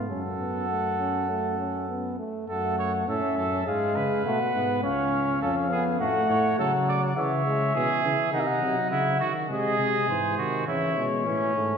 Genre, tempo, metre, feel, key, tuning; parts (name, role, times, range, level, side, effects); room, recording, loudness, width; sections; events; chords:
classical, imitative canzona for brass ensemble; 102 BPM; 4/4; straight; F# minor; A4 = 440 Hz
warm trombone; accompaniment; 0.0-11.8 s; C#3-21c to C#4; -29 LUFS; right 2 dB
dark bass trombone; bass; 0.0-11.8 s; C#2 to E3; -31 LUFS; right 1 dB
mellow trumpet; melody; 0.1-11.8 s; B#4 to F#5; -28 LUFS; left 6 dB
clear trumpet; second line; 0.1-11.8 s; C#4 to D5; -29 LUFS; right 6 dB
wet concert hall reverb, RT60 1.9 s; recorded in a church or concert hall; -23 LUFS; side -6 dB against mid
0.0-2.5 A section; 2.5-11.8 B section
0.1 F#m; 3.7 Fdim/Ab; 4.8 C#; 6.0 F#m/A; 7.2 C#m; 8.3 Cdim; 9.5 G#/B#; 10.7 C#m